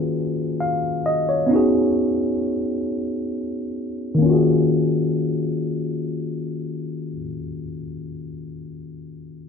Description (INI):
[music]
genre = R&B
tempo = 44 BPM (dotted quarters)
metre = 6/8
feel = straight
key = Eb minor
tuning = A4 = 442 Hz
[part]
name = tine electric piano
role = accompaniment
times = 0.0-9.5 s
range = Eb3 to F5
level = -21 LUFS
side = left 1 dB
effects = none
[sound]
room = moderate studio ambience, RT60 0.5 s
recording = band playing live in one room, low-pass filter, nothing above 10.8 kHz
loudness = -20 LUFS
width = side -6 dB against mid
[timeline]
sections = 0.0-4.2 A section; 4.2-7.0 B section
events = filter sweep 0.0-4.2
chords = 0.0 Ebm11; 1.5 Db9sus4; 4.2 Ebm11